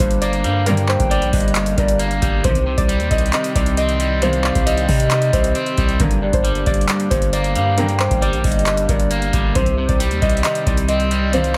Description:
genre	hip hop, trap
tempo	135 BPM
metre	4/4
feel	half-time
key	G minor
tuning	A4 = 440 Hz
part	concert harp	melody	0.0-11.6 s	Bb4 to Eb5	-26 LUFS	equal	low-pass filter
part	electric guitar at the edge of break-up	accompaniment	0.0-11.6 s	G2 to C4	-25 LUFS	equal	low-pass filter
part	warm analog pad	sustained chords	0.0-11.6 s	D3 to G4	-31 LUFS	equal	chorus
part	long sustained 808-style bass	bass	0.0-11.6 s	G1 to C3	-24 LUFS	equal	none
part	booming analog drum machine	drums	0.0-11.5 s	handclaps, hi-hat, kick drum	-22 LUFS	equal	none
part	hollow clarinet-like synth lead	second line	0.4-11.6 s	C5 to G5	-27 LUFS	equal	chorus, tape echo
part	warm studio string section	stabs	0.7-11.5 s	G2 to Eb3	-26 LUFS	equal	none
room	light reverb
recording	none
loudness	-18 LUFS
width	mono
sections	0.0-11.6 A section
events	none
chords	0.0 Gm; 2.4 Cm; 6.0 Gm; 9.6 Cm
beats	0.22 | 0.66 1.11 1.55 2.00 | 2.44 2.89 3.33 3.77 | 4.22 4.66 5.11 5.55 | 6.00 6.44 6.89 7.33 | 7.78 8.22 8.66 9.11 | 9.55 10.00 10.44 10.89 | 11.33

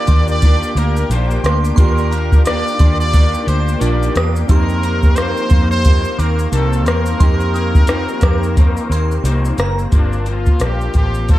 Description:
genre	indie pop, bedroom pop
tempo	88 BPM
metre	4/4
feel	swing 60% on 16ths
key	unclear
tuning	A4 = 444 Hz
part	bright trumpet	melody	0.0-11.4 s	D4 to D5	-23 LUFS	equal	analog chorus, dub echo
part	electric guitar through a small old amp	accompaniment	0.0-11.4 s	F2 to G4	-23 LUFS	left 4 dB	ensemble chorus, vibrato effect, dub echo
part	warm analog keys	accompaniment	0.0-9.9 s	Bb3 to G4	-25 LUFS	right 4 dB	chorus, cassette tape
part	string machine, violins	sustained chords	0.0-9.9 s	Bb3 to D6	-30 LUFS	right 1 dB	none
part	glassy synth bell	second line	0.1-9.8 s	Bb5 to Eb6	-29 LUFS	right 5 dB	wide subtle chorus, dub echo
part	vintage muted fingered electric bass	bass	0.1-11.4 s	F#1 to F2	-17 LUFS	equal	none
part	soft vintage rhythm box	drums	0.1-11.4 s	hi-hat, kick drum, rim click, shaker	-14 LUFS	equal	none
room	digital ambience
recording	echo-heavy mix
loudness	-12 LUFS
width	side -15 dB against mid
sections	0.0-9.9 A section; 9.9-11.4 B section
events	none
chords	0.0 Ebmaj7; 4.5 F7sus4; 9.9 Gm11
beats	0.42 1.10 | 1.78 2.46 3.13 3.81 | 4.49 5.17 5.84 6.52 | 7.20 7.88 8.56 9.24 | 9.92 10.61 11.29

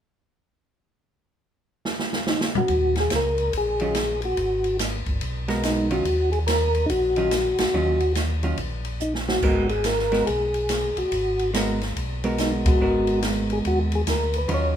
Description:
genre	soul jazz organ trio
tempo	142 BPM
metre	4/4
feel	swing 64% on 8ths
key	unclear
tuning	A4 = 441 Hz
part	open jazz drum kit	drums	1.9-14.6 s	crash cymbal, hi-hat, kick drum, ride cymbal, snare drum, toms	-27 LUFS	equal	none
part	percussive tonewheel organ	melody	2.3-14.8 s	Eb4 to Db5	-23 LUFS	left 1 dB	slow rotary speaker, chorus vibrato
part	mellow tonewheel organ	bass	2.7-14.8 s	G1 to Eb2	-27 LUFS	equal	chorus vibrato, slow rotary speaker
part	vintage hollow-body jazz guitar	accompaniment	3.8-14.7 s	Eb3 to Bb4	-27 LUFS	right 2 dB	none
room	moderate large studio reverb, RT60 1.3 s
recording	minimal, uncompressed stereo recording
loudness	-21 LUFS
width	side -9 dB against mid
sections	1.0-2.7 A section; 2.7-14.8 B section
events	drum fill 1.9-2.7, 9.0-9.4; band accent 7.5, 12.6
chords	1.0 N.C.; 2.7 Ebm7; 4.4 Abm9; 6.1 Ebm9; 9.4 Abm9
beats	| 1.01 1.43 1.85 2.27 | 2.69 3.12 3.54 3.96 | 4.38 4.80 5.22 5.64 | 6.06 6.48 6.90 7.32 | 7.74 8.16 8.59 9.01 | 9.43 9.85 10.27 10.70 | 11.12 11.54 11.96 12.39 | 12.81 13.23 13.65 14.07 | 14.50

